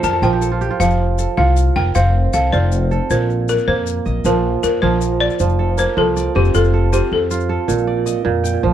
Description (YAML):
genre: west african traditional, West African string and xylophone music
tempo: 105 BPM (dotted quarters)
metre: 12/8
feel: straight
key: F mixolydian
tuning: A4 = 442 Hz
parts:
  - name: balafon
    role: melody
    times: 0.0-7.5 s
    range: G4 to A5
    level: -20 LUFS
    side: left 4 dB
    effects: none
  - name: kora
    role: arpeggios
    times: 0.0-8.7 s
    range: Bb2 to G5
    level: -19 LUFS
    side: right 7 dB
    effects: tape echo
  - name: upright bass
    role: bass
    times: 0.0-8.7 s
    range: F1 to F2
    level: -18 LUFS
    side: left 1 dB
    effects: none
  - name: tube shaker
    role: percussion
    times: 0.0-8.5 s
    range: none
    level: -32 LUFS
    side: left 20 dB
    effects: none
room: small room ambience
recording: dry, close 1970s-style studio recording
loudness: -14 LUFS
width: side -10 dB against mid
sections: 0.0-5.4 A section; 5.4-8.7 B section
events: kora fill 0.0-0.8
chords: 0.0 Bb; 0.8 F; 3.1 Bb; 5.4 F; 7.7 Bb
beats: 0.23 | 0.80 1.38 1.95 2.53 | 3.10 3.68 4.25 4.82 | 5.40 5.97 6.54 7.11 | 7.68 8.26